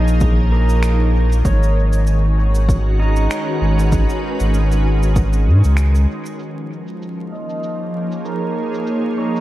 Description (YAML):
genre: ambient dub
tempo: 97 BPM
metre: 4/4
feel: swing 56% on 16ths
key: unclear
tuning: A4 = 440 Hz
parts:
  - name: soft additive organ-like pad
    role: sustained chords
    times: 0.0-9.4 s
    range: D#3 to C#5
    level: -22 LUFS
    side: equal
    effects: ensemble chorus, built-in reverb
  - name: pedal steel guitar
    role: arpeggios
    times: 0.0-9.4 s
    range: D#4 to A#5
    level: -26 LUFS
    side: right 2 dB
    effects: low-pass filter, tape echo
  - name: warm sub bass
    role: bass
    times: 0.0-6.1 s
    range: G#1 to G#2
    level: -14 LUFS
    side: equal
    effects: none
  - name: cabasa and finger snaps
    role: drums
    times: 0.1-9.4 s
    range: none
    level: -31 LUFS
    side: right 1 dB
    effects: low-pass filter on perc, low-pass filter on snare, low-pass filter on room, dub echo
  - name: electronic kick drum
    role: drums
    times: 0.2-5.3 s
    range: none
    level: -19 LUFS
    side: equal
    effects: overdrive
room: small room ambience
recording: dark, warm production, vinyl crackle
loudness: -14 LUFS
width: side -15 dB against mid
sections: 0.0-6.4 A section; 6.4-9.4 B section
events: filter sweep on pedal steel guitar 6.4-9.4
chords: 0.0 A#m7; 1.4 G#m; 6.4 A#m7